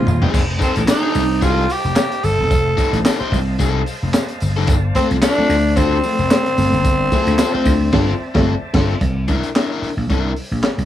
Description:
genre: funk.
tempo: 111 BPM.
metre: 4/4.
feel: swing 56% on 16ths.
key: unclear.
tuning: A4 = 438 Hz.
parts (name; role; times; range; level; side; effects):
growling tenor saxophone; melody; 0.0-8.5 s; C4 to A4; -19 LUFS; equal; none.
percussive tonewheel organ; sustained chords; 0.0-9.0 s; C5 to A5; -30 LUFS; right 1 dB; slow rotary speaker.
reed electric piano; stabs; 0.0-0.3, 4.7-8.9 s; G2 to C4; -22 LUFS; right 3 dB; fast tremolo.
vintage slap bass; bass; 0.0-10.8 s; Eb1 to D2; -19 LUFS; equal; none.
crunchy breakbeat drum kit; drums; 0.1-10.8 s; crash cymbal, handclaps, hi-hat, kick drum, snare drum, toms; -20 LUFS; equal; none.
tambourine; percussion; 0.1-7.8 s; none; -36 LUFS; left 4 dB; none.
crunchy overdriven guitar; accompaniment; 0.2-10.3 s; C4 to C5; -22 LUFS; left 10 dB; none.
room: light reverb.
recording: none.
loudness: -14 LUFS.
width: side -12 dB against mid.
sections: 0.3-9.0 A section; 9.0-10.8 B section.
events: drum fill 0.0-0.3; band accent 7.9-9.0.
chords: 0.3 F9; 4.7 G9sus4; 9.0 C9.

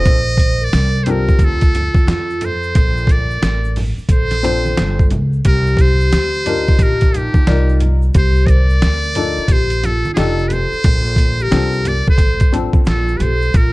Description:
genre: hip hop, jazz-hop.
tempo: 89 BPM.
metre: 4/4.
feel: swing 64% on 16ths.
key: unclear.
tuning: A4 = 436 Hz.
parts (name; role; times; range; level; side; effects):
trumpet with metal mute; melody; 0.0-13.7 s; G4 to Eb5; -21 LUFS; equal; none.
vibraphone with soft mallets; second line; 0.0-13.7 s; Eb4 to C5; -23 LUFS; equal; slapback echo.
warm upright piano; accompaniment; 0.0-12.8 s; D3 to D5; -22 LUFS; left 4 dB; none.
upright bass; bass; 0.0-13.7 s; F1 to F2; -17 LUFS; equal; none.
trip hop sampler-style drum kit; drums; 0.1-13.7 s; hi-hat, kick drum, snare drum; -14 LUFS; equal; none.
egg shaker and congas; percussion; 0.1-13.7 s; none; -28 LUFS; right 1 dB; none.
room: small room ambience.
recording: dark, warm production.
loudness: -12 LUFS.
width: side -20 dB against mid.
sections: 0.0-13.7 A section.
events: none.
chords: 0.1 Bbmaj9; 5.5 Cm11; 10.2 F13; 10.8 Bbmaj9.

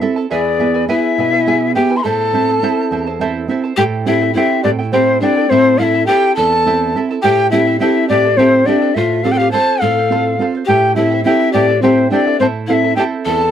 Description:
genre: andean folk, Andean ensemble.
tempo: 70 BPM (dotted quarters).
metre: 6/8.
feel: straight.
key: A minor.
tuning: A4 = 441 Hz.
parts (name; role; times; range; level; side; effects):
charango; accompaniment; 0.0-13.5 s; E4 to A5; -22 LUFS; right 6 dB; none.
nylon-string guitar; accompaniment; 0.0-13.5 s; E2 to A4; -18 LUFS; right 4 dB; none.
breathy bright large quena; melody; 0.3-13.5 s; C5 to C6; -15 LUFS; equal; none.
breathy pan flute; second line; 0.3-13.5 s; C4 to E5; -17 LUFS; left 6 dB; none.
room: moderate booth ambience, RT60 0.2 s.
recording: dry, close 1970s-style studio recording.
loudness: -12 LUFS.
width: side -9 dB against mid.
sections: 0.0-3.8 A section; 3.8-13.5 B section.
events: none.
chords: 0.3 E; 2.0 Am; 3.8 C/A; 5.5 Am; 7.2 C/A; 9.0 F/A; 10.7 C/A; 12.4 Am.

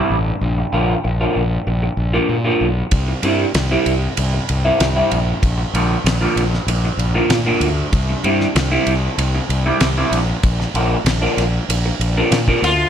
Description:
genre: psychedelic rock.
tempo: 96 BPM.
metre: 4/4.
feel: straight.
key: unclear.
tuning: A4 = 440 Hz.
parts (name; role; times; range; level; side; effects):
electric guitar through a small old amp; riff; 0.0-12.7 s; C3 to F4; -19 LUFS; right 1 dB; phaser.
overtone-sweeping drone; drone; 0.0-12.9 s; C2 to G2; -29 LUFS; equal; chorus, built-in reverb, phaser.
fuzz fingered electric bass; bass; 0.1-12.8 s; A1 to Bb2; -19 LUFS; equal; overdrive.
damped 70s drum kit; drums; 2.9-12.8 s; kick drum, ride cymbal, snare drum; -21 LUFS; equal; none.
sitar; melody; 12.6-12.9 s; F4; -15 LUFS; left 2 dB; slapback echo.
room: light reverb, small room ambience.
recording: none.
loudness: -15 LUFS.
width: side -9 dB against mid.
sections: 0.0-12.9 A section.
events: none.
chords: 0.4 Bb; 2.9 C; 5.4 Bb; 7.9 C; 10.4 Bb.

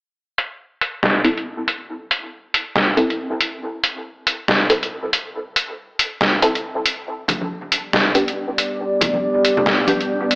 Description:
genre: deep dubstep.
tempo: 139 BPM.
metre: 4/4.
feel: swing 60% on 16ths, half-time.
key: A minor.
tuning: A4 = 442 Hz.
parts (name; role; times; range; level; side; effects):
trip hop sampler-style drum kit; drums; 0.4-10.4 s; hi-hat, snare drum; -18 LUFS; equal; low-pass filter on hats, studio reverb, low-pass filter on snare.
filtered dub chord stab; stabs; 1.2-10.0 s; B3 to A4; -22 LUFS; equal; phaser, lush chorus, dub echo.
deep dark ambient pad; sustained chords; 8.3-10.4 s; B3 to D5; -19 LUFS; equal; chorus, built-in reverb.
congas; percussion; 7.3-10.0 s; none; -26 LUFS; equal; dub echo.
room: moderate echo chamber reverb, RT60 2.0 s.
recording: AM radio sound.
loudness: -17 LUFS.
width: side -28 dB against mid.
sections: 0.2-10.4 A section.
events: none.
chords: 0.2 Am; 7.1 G.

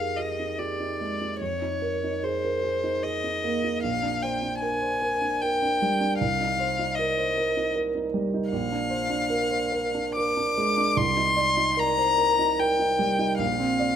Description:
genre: classical, impressionist duo for violin and grand piano.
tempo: 75 BPM.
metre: 3/4.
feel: uneven beats, rubato.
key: unclear.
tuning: A4 = 445 Hz.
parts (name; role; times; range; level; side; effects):
rich violin; melody; 0.0-14.0 s; C5 to D6; -25 LUFS; left 3 dB; none.
warm grand piano; accompaniment; 0.0-14.0 s; Bb1 to D5; -26 LUFS; right 3 dB; none.
room: wet large studio reverb, RT60 1.4 s.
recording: minimal, uncompressed stereo recording.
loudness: -23 LUFS.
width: side -8 dB against mid.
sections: 0.0-14.0 A section.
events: none.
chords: 0.0 Fm11; 1.4 Eb9sus4/F; 3.8 Bb13; 6.2 Cm7; 8.5 Bb9; 11.0 Cm9; 13.4 Bbadd9.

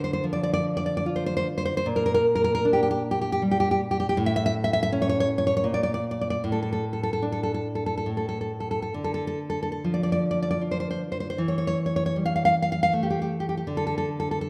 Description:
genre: romantic piece for solo classical guitar.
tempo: 64-84 BPM.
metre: 3/4.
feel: rubato.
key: D minor.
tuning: A4 = 440 Hz.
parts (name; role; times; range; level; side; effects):
nylon-string guitar; solo; 0.0-14.5 s; A2 to F5; -26 LUFS; equal; none.
room: wet recital hall reverb, RT60 1.6 s.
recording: none.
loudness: -26 LUFS.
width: mono.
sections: 0.0-14.5 A section.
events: none.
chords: 0.0 Dm; 1.9 Gm/Bb; 4.2 A; 5.6 N.C.; 6.4 D5/A; 8.1 N.C.; 8.9 Dm; 11.4 A5/E; 13.7 N.C..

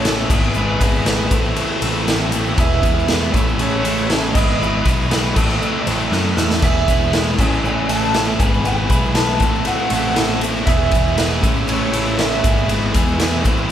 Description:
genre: indie rock.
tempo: 119 BPM.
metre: 4/4.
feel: straight.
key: E major.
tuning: A4 = 440 Hz.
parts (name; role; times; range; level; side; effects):
electric guitar through a small old amp; melody; 0.0-13.7 s; B4 to A5; -24 LUFS; right 3 dB; tremolo.
bright tonewheel organ; sustained chords; 0.0-13.7 s; C#3 to E5; -32 LUFS; left 1 dB; none.
crunchy overdriven guitar; riff; 0.0-13.7 s; E2 to B4; -20 LUFS; right 1 dB; none.
growling picked electric bass; bass; 0.0-13.7 s; E1 to F#2; -23 LUFS; equal; overdrive.
raw garage drum kit; drums; 0.0-13.6 s; crash cymbal, kick drum, ride cymbal, snare drum; -18 LUFS; equal; none.
tube shaker; percussion; 0.1-13.7 s; none; -37 LUFS; left 10 dB; none.
room: moderate large studio reverb, RT60 0.8 s.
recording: band playing live in one room.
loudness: -15 LUFS.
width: side -10 dB against mid.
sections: 0.0-13.7 A section.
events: drum fill 6.1-6.6.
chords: 0.3 Emaj7/G#; 1.3 Am6; 2.6 E; 3.3 Amaj7; 4.4 Emaj7/G#; 5.4 Am6; 6.6 E; 7.4 Amaj7; 8.4 Emaj7/G#; 9.4 Am6; 10.7 E; 11.4 Amaj7; 12.4 Emaj7/G#.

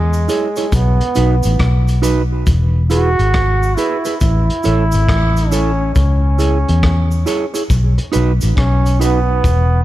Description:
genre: roots reggae.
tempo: 69 BPM.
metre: 4/4.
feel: swing 65% on 16ths.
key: unclear.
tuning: A4 = 440 Hz.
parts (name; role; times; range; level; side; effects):
clear trombone; melody; 0.0-9.8 s; G#3 to F#4; -20 LUFS; right 2 dB; dub echo.
vintage muted fingered electric bass; bass; 0.0-9.8 s; E1 to E2; -14 LUFS; equal; none.
cabasa; percussion; 0.1-9.7 s; none; -33 LUFS; right 2 dB; none.
mellow electric guitar; accompaniment; 0.3-9.2 s; D#4 to C#5; -21 LUFS; right 4 dB; dub echo.
crunchy breakbeat drum kit; drums; 0.3-9.7 s; hi-hat, kick drum, rim click; -20 LUFS; left 1 dB; none.
room: little or no reverb.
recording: echo-heavy mix.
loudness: -12 LUFS.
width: side -14 dB against mid.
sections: 0.0-9.8 A section.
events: none.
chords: 0.0 C#m; 0.7 B; 2.5 E; 4.2 A; 6.0 C#m; 7.7 B.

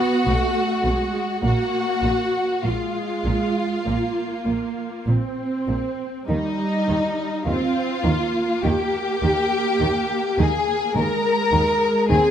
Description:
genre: classical, slow romantic movement for string orchestra.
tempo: 49-54 BPM.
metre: 4/4.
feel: rubato.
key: unclear.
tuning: A4 = 440 Hz.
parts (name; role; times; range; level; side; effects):
warm symphonic violin section; melody; 0.0-12.3 s; Eb5 to Bb5; -29 LUFS; left 4 dB; none.
warm symphonic violin section; second line; 0.0-12.3 s; Eb4 to Bb4; -22 LUFS; left 1 dB; none.
rich symphonic viola section; accompaniment; 0.0-12.3 s; G3 to C4; -26 LUFS; right 2 dB; none.
rich symphonic cello section; bass; 0.3-12.2 s; Bb2 to Eb3; -26 LUFS; right 2 dB; none.
warm studio double bass section; bass; 0.3-12.2 s; Bb1 to Eb2; -25 LUFS; right 2 dB; none.
room: moderate recital hall reverb, RT60 1.4 s.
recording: close, detailed microphones.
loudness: -19 LUFS.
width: side -9 dB against mid.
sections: 0.0-12.3 A section.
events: none.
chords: 0.0 B5; 1.4 Bb5; 6.3 Eb.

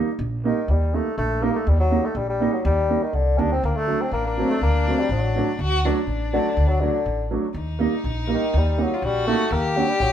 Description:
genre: klezmer.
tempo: 122 BPM.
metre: 2/4.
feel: straight.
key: unclear.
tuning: A4 = 441 Hz.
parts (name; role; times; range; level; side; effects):
warm upright piano; accompaniment; 0.0-9.9 s; F#3 to Eb4; -24 LUFS; right 4 dB; none.
upright bass; bass; 0.2-10.1 s; A1 to Eb2; -23 LUFS; equal; none.
warm bassoon; melody; 0.5-10.1 s; D3 to D4; -24 LUFS; left 2 dB; none.
dark violin; second line; 3.6-10.1 s; D4 to G4; -27 LUFS; left 4 dB; none.
room: moderate studio reverb, RT60 0.7 s.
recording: band playing live in one room.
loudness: -19 LUFS.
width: side -9 dB against mid.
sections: 0.0-7.6 A section; 7.6-10.1 A section.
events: none.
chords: 0.0 Eb; 3.6 D; 7.6 Eb.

